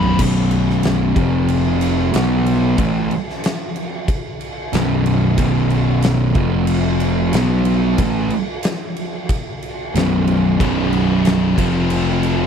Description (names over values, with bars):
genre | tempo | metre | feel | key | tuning
stoner and doom metal | 92 BPM | 4/4 | straight | unclear | A4 = 440 Hz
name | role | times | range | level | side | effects
fuzz guitar | riff | 0.0-12.5 s | B1 to B3 | -19 LUFS | left 10 dB | distortion
heavy high-gain guitar | riff | 0.0-0.2, 10.6-12.5 s | B1 to F3 | -24 LUFS | left 1 dB | distortion
thick fuzz guitar | riff | 0.0-12.5 s | B1 to B3 | -19 LUFS | right 9 dB | distortion
fuzz picked electric bass | bass | 0.0-12.5 s | B0 to B1 | -21 LUFS | equal | overdrive
oversized low-tuned drum kit | drums | 0.0-12.4 s | crash cymbal, kick drum, snare drum, toms | -22 LUFS | equal | none
room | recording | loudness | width
small room ambience | none | -15 LUFS | side -7 dB against mid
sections
0.2-12.5 A section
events
drum fill 0.0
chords
0.0 B5; 1.2 F5; 2.1 B5; 6.4 F5; 7.3 B5; 11.6 F5